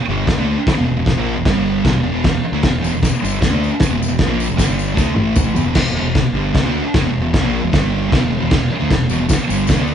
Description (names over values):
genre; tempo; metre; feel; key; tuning
garage rock duo or trio; 153 BPM; 4/4; straight; unclear; A4 = 440 Hz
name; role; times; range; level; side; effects
thick fuzz guitar; riff; 0.1-9.9 s; E2 to D4; -18 LUFS; equal; distortion
growling picked electric bass; bass; 0.1-9.9 s; E1 to E2; -24 LUFS; equal; overdrive
cloth-damped thuddy drum kit; drums; 0.3-9.8 s; crash cymbal, kick drum, snare drum, toms; -17 LUFS; equal; none
tambourine; percussion; 2.8-5.7, 9.1-9.9 s; none; -31 LUFS; left 6 dB; none
room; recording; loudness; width
light reverb; band playing live in one room, nothing above 10.4 kHz; -14 LUFS; side -8 dB against mid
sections
0.0-5.8 A section; 5.8-9.9 A section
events
drum fill 5.0-5.8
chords
0.0 E5; 1.4 G5; 1.8 E5; 4.6 G5; 5.0 E5; 7.7 G5; 8.1 E5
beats
0.27 0.67 | 1.06 1.45 1.84 2.23 | 2.62 3.02 3.41 3.80 | 4.19 4.59 4.98 5.37 | 5.76 6.16 6.55 6.94 | 7.33 7.73 8.12 8.51 | 8.90 9.29 9.69